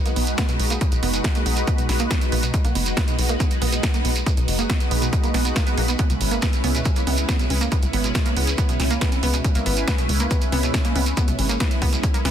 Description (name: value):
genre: uplifting trance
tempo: 139 BPM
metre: 4/4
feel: straight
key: B major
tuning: A4 = 441 Hz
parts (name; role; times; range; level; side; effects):
- analog string pad; sustained chords; 0.0-12.3 s; G#3 to B4; -27 LUFS; equal; ensemble chorus, sidechain pumping
- analog pluck; arpeggios; 0.1-12.3 s; B2 to B3; -28 LUFS; right 4 dB; chorus, sidechain pumping, digital delay
- punchy analog drum machine; drums; 0.1-12.3 s; congas, hi-hat, snare drum; -27 LUFS; right 1 dB; overdrive
- shekere; percussion; 0.1-12.2 s; none; -32 LUFS; right 4 dB; none
- tight sequencer bass; bass; 0.2-12.3 s; F#1 to C#2; -23 LUFS; left 1 dB; tube saturation, sidechain pumping
- electronic kick drum; drums; 0.4-12.1 s; none; -22 LUFS; equal; none
room: little or no reverb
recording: dense, heavily limited modern master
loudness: -18 LUFS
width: side -9 dB against mid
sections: 0.0-12.3 A section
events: filter sweep on synth pluck 0.0-12.3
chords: 0.0 B6; 6.0 C#m7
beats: 0.38 | 0.81 1.24 1.68 2.11 | 2.54 2.97 3.40 3.83 | 4.26 4.70 5.13 5.56 | 5.99 6.42 6.86 7.29 | 7.72 8.15 8.58 9.01 | 9.45 9.88 10.31 10.74 | 11.17 11.60 12.04